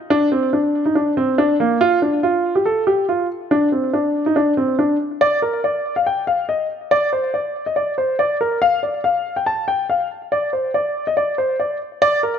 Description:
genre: hip hop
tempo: 141 BPM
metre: 4/4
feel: half-time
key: unclear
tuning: A4 = 440 Hz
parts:
  - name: dark baby grand piano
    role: solo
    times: 0.1-12.4 s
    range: Bb3 to A5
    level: -16 LUFS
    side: equal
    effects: low-pass filter
room: moderate scoring stage reverb, RT60 1.5 s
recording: none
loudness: -16 LUFS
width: side -8 dB against mid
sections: 0.0-5.2 A section; 5.2-12.0 B section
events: none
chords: none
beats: | 0.10 0.53 0.96 1.38 | 1.81 2.23 2.66 3.08 | 3.51 3.94 4.36 4.79 | 5.21 5.64 6.06 6.49 | 6.91 7.34 7.76 8.19 | 8.62 9.04 9.47 9.89 | 10.32 10.74 11.17 11.59 | 12.02

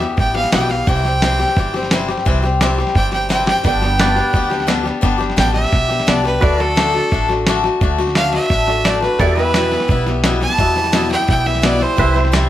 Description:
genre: honky-tonk and classic country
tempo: 173 BPM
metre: 4/4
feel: straight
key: G major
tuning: A4 = 437 Hz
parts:
  - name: picked swing-style acoustic guitar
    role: accompaniment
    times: 0.0-12.5 s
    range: E2 to G4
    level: -19 LUFS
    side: left 5 dB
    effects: none
  - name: upright bass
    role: bass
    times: 0.0-12.5 s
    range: G1 to E2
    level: -20 LUFS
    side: right 1 dB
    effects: none
  - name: dusty soul sampler-style drum kit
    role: drums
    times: 0.0-12.4 s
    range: hi-hat, kick drum, snare drum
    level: -19 LUFS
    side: right 1 dB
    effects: overdrive
  - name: clear fiddle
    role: melody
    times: 0.2-12.2 s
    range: A4 to A5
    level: -19 LUFS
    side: right 2 dB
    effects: slapback echo
  - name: honky-tonk upright piano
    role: accompaniment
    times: 3.6-12.5 s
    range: F#4 to E5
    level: -27 LUFS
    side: right 6 dB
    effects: none
  - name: pedal steel guitar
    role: sustained chords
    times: 4.0-12.5 s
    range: A4 to E5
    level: -25 LUFS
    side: right 2 dB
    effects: none
room: moderate studio reverb, RT60 0.7 s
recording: none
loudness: -13 LUFS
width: side -12 dB against mid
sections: 0.0-12.5 A section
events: fiddle solo 0.0-12.5; drum fill 3.3-3.7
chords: 0.0 Em; 0.9 C; 3.7 G; 6.4 D; 9.2 Em; 12.0 C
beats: 0.18 0.53 | 0.88 1.23 1.57 1.92 | 2.27 2.61 2.96 3.31 | 3.65 4.00 4.35 4.69 | 5.04 5.39 5.73 6.08 | 6.43 6.78 7.12 7.47 | 7.82 8.16 8.51 8.86 | 9.21 9.55 9.90 10.25 | 10.59 10.94 11.29 11.64 | 11.98 12.33

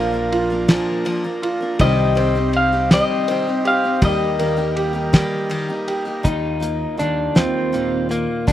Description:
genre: indie folk with a building arrangement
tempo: 54 BPM (dotted quarters)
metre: 6/8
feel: straight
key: Eb major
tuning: A4 = 440 Hz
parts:
  - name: electric guitar through a small old amp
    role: melody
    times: 0.0-8.5 s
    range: Bb3 to F5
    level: -20 LUFS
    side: left 1 dB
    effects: harmonic tremolo, slapback echo
  - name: felt-muted upright piano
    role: accompaniment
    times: 0.0-6.3 s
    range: Bb1 to Eb5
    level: -32 LUFS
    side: left 3 dB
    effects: none
  - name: picked steel-string acoustic guitar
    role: accompaniment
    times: 0.0-8.5 s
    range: Bb2 to Bb4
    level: -26 LUFS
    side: left 3 dB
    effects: slapback echo
  - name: hand-pumped harmonium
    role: sustained chords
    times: 0.0-6.2 s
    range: F4 to C6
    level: -30 LUFS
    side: right 1 dB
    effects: none
  - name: clear upright piano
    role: arpeggios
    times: 0.0-6.2 s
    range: F3 to G4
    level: -22 LUFS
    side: right 3 dB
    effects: slapback echo
  - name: upright bass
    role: bass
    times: 0.0-8.5 s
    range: Bb1 to Eb2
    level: -25 LUFS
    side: equal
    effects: none
  - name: cloth-damped thuddy drum kit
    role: drums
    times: 0.3-8.5 s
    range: hi-hat, kick drum, ride cymbal, snare drum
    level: -17 LUFS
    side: equal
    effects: none
  - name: fingerpicked plugged-in steel-string acoustic guitar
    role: accompaniment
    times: 6.2-8.5 s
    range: Eb2 to F4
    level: -26 LUFS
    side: left 1 dB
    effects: slapback echo
room: little or no reverb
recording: recorded outdoors, with no room sound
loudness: -16 LUFS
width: side -12 dB against mid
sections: 0.0-6.2 A section; 6.2-8.5 B section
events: none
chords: 0.0 Bb; 1.8 Cm; 4.0 Eb; 6.2 Ebadd9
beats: 0.69 | 1.80 2.91 | 4.02 5.13 | 6.25 7.36 | 8.47

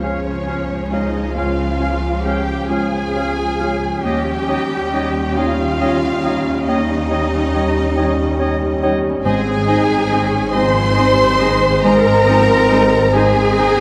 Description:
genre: cinematic, emotional film score for orchestra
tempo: 46 BPM (dotted quarters)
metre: 6/8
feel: rubato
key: Db lydian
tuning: A4 = 438 Hz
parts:
  - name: rich studio violin section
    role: melody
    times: 0.0-13.8 s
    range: Db5 to C6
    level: -29 LUFS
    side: equal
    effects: none
  - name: clear oboe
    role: second line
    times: 0.0-13.7 s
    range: Eb5 to F5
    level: -31 LUFS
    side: equal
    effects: none
  - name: mellow clarinet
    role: second line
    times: 0.0-13.7 s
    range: C5 to Db5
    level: -29 LUFS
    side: equal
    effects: none
  - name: mellow hollow concert flute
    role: second line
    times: 0.0-13.7 s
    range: G5 to Ab5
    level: -32 LUFS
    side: equal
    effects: none
  - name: rich studio violin section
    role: second line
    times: 0.0-13.8 s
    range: Db5 to C6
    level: -28 LUFS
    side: equal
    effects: none
  - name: felt-muted upright piano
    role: accompaniment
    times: 0.0-13.8 s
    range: Db2 to F4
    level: -24 LUFS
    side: equal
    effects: none
  - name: warm studio viola section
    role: accompaniment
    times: 0.0-13.8 s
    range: Db3 to Eb4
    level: -27 LUFS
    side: equal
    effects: none
  - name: mellow French horn section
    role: sustained chords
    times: 0.0-13.8 s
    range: Db3 to C5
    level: -24 LUFS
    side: equal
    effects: none
  - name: rich studio double bass section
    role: bass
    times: 0.0-13.8 s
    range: Ab1 to Eb2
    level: -25 LUFS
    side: equal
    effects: none
  - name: warm symphonic cello section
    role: bass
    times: 0.0-13.8 s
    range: Db4 to C5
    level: -23 LUFS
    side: equal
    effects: none
  - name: timpani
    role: percussion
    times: 9.2-10.5 s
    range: Ab2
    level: -30 LUFS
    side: equal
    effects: none
room: wet cathedral reverb, RT60 6.4 s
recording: in a vast, echoing space, vinyl crackle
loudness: -16 LUFS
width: mono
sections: 0.0-13.8 A section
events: none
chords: 0.0 Db; 4.0 Eb7; 9.3 Ab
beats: 0.02 | 1.36 2.71 | 4.05 5.38 | 6.68 7.97 | 9.25 10.54 | 11.84 13.14

